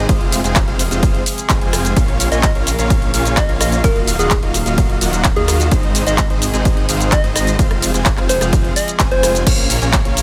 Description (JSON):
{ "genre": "EDM, festival progressive house", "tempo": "128 BPM", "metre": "4/4", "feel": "straight", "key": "Bb minor", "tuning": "A4 = 436 Hz", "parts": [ { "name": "rich chamber string section", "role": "sustained chords", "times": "0.0-10.2 s", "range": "C3 to F5", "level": "-28 LUFS", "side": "equal", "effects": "sidechain pumping" }, { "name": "dense compressed supersaw", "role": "riff", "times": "0.0-10.2 s", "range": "Ab3 to Ab5", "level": "-24 LUFS", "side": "equal", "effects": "sidechain pumping, digital delay" }, { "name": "detuned saw bass", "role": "bass", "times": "0.0-10.2 s", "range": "Eb1 to Eb2", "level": "-23 LUFS", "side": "equal", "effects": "chorus, sidechain pumping" }, { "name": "big-room dance drum kit", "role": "drums", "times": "0.1-10.2 s", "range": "crash cymbal, handclaps, hi-hat, ride cymbal, rim click, shaker", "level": "-22 LUFS", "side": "equal", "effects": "none" }, { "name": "electronic kick drum", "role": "drums", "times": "0.1-10.0 s", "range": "none", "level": "-19 LUFS", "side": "equal", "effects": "none" }, { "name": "soft struck synth lead", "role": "melody", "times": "2.3-9.5 s", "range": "Ab4 to Eb5", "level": "-23 LUFS", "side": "equal", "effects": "chorus, tremolo, digital delay" } ], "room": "little or no reverb", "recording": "none", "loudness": "-15 LUFS", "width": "mono", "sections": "0.0-9.5 A section", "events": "drop 0.0-9.5", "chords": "0.1 Fm; 2.0 Bbm; 3.8 Ebmadd9; 5.7 Ab; 7.6 Fm; 9.5 Bbm" }